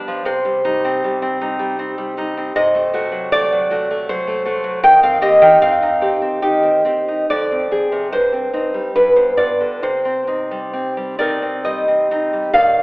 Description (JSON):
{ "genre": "romantic piece for solo classical guitar", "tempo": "64-82 BPM", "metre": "3/4", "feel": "rubato", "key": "C minor", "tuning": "A4 = 440 Hz", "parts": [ { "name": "nylon-string guitar", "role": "solo", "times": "0.0-12.8 s", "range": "F2 to G5", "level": "-14 LUFS", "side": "equal", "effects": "none" } ], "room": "wet recital hall reverb, RT60 1.5 s", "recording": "recorded in a church or concert hall, telephone sound", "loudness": "-14 LUFS", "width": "side -24 dB against mid", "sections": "0.0-12.5 A section", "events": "none", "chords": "0.2 Cm; 2.5 Cdim7; 4.8 Cm/Eb; 7.3 Dm7b5/F; 8.1 Cm/G; 8.9 G7; 9.8 Cm", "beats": "| 0.25 1.03 1.78 | 2.55 3.32 4.09 | 4.83 5.62 6.42 | 7.29 8.10 8.93 | 9.82 10.73 11.65 | 12.54" }